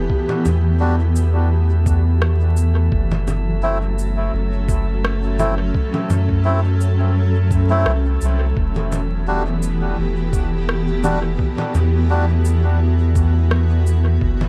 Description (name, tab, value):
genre	ambient dub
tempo	85 BPM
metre	4/4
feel	swing 54% on 16ths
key	E minor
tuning	A4 = 442 Hz
part	granular cloud pad	sustained chords	0.0-14.5 s	E3 to A4	-27 LUFS	equal	built-in reverb, vintage 12-bit sampler grit
part	soft dub sub bass	bass	0.0-14.5 s	E1 to F#2	-19 LUFS	equal	tube saturation
part	drifting glass-harmonics texture	texture	0.0-14.5 s	A3 to A4	-35 LUFS	equal	chorus, built-in reverb
part	electronic kick drum	drums	0.1-14.4 s	none	-23 LUFS	equal	none
part	electronic congas, cabasa and rim click	drums	0.3-14.5 s	none	-30 LUFS	equal	dub echo
part	melodica	stabs	0.8-12.3 s	G3 to F#4	-29 LUFS	equal	dub echo
room	digital ambience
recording	vinyl crackle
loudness	-18 LUFS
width	mono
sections	0.0-14.5 A section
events	none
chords	0.0 Em; 2.9 F#m7b5; 8.6 Em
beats	| 0.10 0.81 1.51 2.22 | 2.92 3.63 4.33 5.04 | 5.75 6.45 7.16 7.87 | 8.57 9.28 9.98 10.69 | 11.39 12.10 12.81 13.51 | 14.22